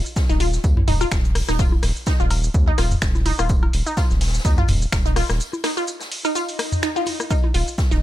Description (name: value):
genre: minimal techno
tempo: 126 BPM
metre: 4/4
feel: swing 56% on 16ths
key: unclear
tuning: A4 = 439 Hz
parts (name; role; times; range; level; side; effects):
- punchy analog drum machine; drums; 0.1-8.0 s; finger snaps, hi-hat, shaker; -29 LUFS; right 1 dB; none
- electronic kick drum; drums; 0.2-7.9 s; none; -20 LUFS; equal; none
- street-band drum kit; drums; 0.2-8.0 s; hi-hat, snare drum, tambourine; -36 LUFS; left 1 dB; sidechain pumping on hats, high-pass filter on hats, high-pass filter on snare, sidechain pumping on perc, high-pass filter on perc, high-pass filter on room
- resonant blip pluck; riff; 0.3-8.0 s; Eb4 to F4; -26 LUFS; equal; phaser, sidechain pumping, tape echo
- round analog bass; bass; 0.3-8.0 s; Eb1 to Eb2; -22 LUFS; equal; sidechain pumping
- techno drum kit; percussion; 0.8-7.5 s; bongos, cowbell, rim click, toms; -26 LUFS; left 1 dB; overdrive, tape echo
- swell; sound effects; 6.5-7.3 s; none; -32 LUFS; left 2 dB; none
room: little or no reverb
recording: none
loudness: -18 LUFS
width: side -14 dB against mid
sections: 0.0-8.0 A section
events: break 5.4-7.3; swell 6.5-7.3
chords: 0.0 Eb5